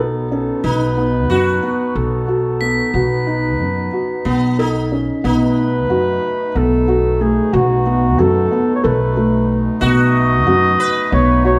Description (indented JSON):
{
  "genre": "contemporary instrumental, chamber music in an uneven meter",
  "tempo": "183 BPM (eighths)",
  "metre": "7/8",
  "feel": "straight",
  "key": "B mixolydian",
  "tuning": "A4 = 440 Hz",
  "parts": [
    { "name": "mellow flugelhorn", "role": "melody", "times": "0.0-11.6 s", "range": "F#4 to D#5", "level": "-22 LUFS", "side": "equal", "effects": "none" },
    { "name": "sitar", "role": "second line", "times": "0.0-11.6 s", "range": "B3 to B4", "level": "-25 LUFS", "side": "equal", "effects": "none" },
    { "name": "mellow woodwind section", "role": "sustained chords", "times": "0.0-11.6 s", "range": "B2 to D#4", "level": "-29 LUFS", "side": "equal", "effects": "none" },
    { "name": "felt-muted upright piano", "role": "arpeggios", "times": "0.0-11.6 s", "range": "A3 to A4", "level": "-20 LUFS", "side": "equal", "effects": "none" },
    { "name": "upright bass", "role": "bass", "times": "0.0-11.6 s", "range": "B1 to F#2", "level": "-22 LUFS", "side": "equal", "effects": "none" },
    { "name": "crotales", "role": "texture", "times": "2.6-3.9 s", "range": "B6", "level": "-28 LUFS", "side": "equal", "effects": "none" }
  ],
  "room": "moderate recital hall reverb, RT60 1.6 s",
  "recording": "none",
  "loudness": "-16 LUFS",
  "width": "mono",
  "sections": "0.0-5.2 A section; 5.2-11.6 B section",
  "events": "none",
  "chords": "0.0 B7"
}